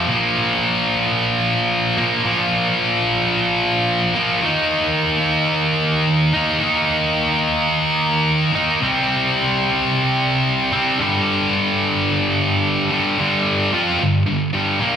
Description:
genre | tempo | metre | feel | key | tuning
rock | 110 BPM | 4/4 | straight | G minor | A4 = 440 Hz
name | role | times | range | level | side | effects
heavy high-gain guitar | solo | 0.0-15.0 s | G2 to F4 | -16 LUFS | equal | distortion
room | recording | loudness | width
wet lush hall reverb, RT60 2.3 s | big arena sound | -16 LUFS | side -8 dB against mid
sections
0.0-13.2 A section; 13.2-15.0 B section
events
none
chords
0.1 Bb5; 4.4 Eb5; 8.8 C5; 11.0 G5; 13.2 Gm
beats
| 0.06 0.61 1.15 1.70 | 2.25 2.79 3.34 3.89 | 4.43 4.98 5.53 6.08 | 6.62 7.17 7.72 8.26 | 8.81 9.36 9.90 10.45 | 11.00 11.54 12.09 12.64 | 13.19 13.73 14.28 14.83

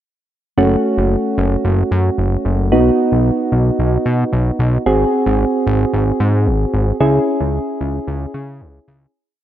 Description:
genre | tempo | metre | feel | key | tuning
synth-pop | 112 BPM | 4/4 | straight | F# dorian | A4 = 440 Hz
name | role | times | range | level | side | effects
soft electric-piano-like synth keys | accompaniment | 0.6-9.1 s | A3 to G#4 | -16 LUFS | right 1 dB | chorus
fat analog bass | bass | 0.6-9.1 s | F#1 to C#3 | -16 LUFS | equal | none
room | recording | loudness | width
moderate lush hall reverb, RT60 2.2 s | none | -14 LUFS | side -11 dB against mid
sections
0.6-9.1 verse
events
fade-out 7.0-9.1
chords
0.6 F#m; 2.7 B; 4.9 G#7; 7.0 C#m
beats
| 0.58 1.11 1.65 2.18 | 2.72 3.25 3.79 4.33 | 4.86 5.40 5.93 6.47 | 7.00 7.54 8.08 8.61

